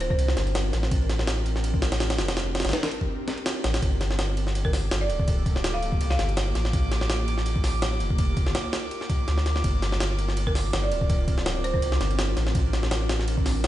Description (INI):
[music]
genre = drum and bass, jungle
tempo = 165 BPM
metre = 4/4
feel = swing 54% on 16ths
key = G minor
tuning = A4 = 440 Hz
[part]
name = folk marimba with hard mallets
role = melody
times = 0.0-0.2, 4.6-6.4, 10.5-11.8 s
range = Bb4 to F5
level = -33 LUFS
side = right 2 dB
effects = vintage 12-bit sampler grit, dub echo
[part]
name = ethereal airy pad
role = sustained chords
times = 0.0-13.7 s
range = Bb3 to Bb4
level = -34 LUFS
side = equal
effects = ensemble chorus, built-in reverb
[part]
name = soft dub sub bass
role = bass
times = 0.0-13.7 s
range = D1 to D2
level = -26 LUFS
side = equal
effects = none
[part]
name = jungle sampler-style drum kit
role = drums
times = 0.0-13.7 s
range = hi-hat, kick drum, ride cymbal, snare drum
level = -26 LUFS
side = equal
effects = none
[part]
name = drifting glass-harmonics texture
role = texture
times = 4.6-13.7 s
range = D6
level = -37 LUFS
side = right 2 dB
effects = chorus, built-in reverb
[sound]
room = light reverb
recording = played on a big sound system in a bare room, stone room reverb, nothing above 10.5 kHz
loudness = -23 LUFS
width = side -14 dB against mid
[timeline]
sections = 0.0-13.7 A section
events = none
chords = 0.0 Gm9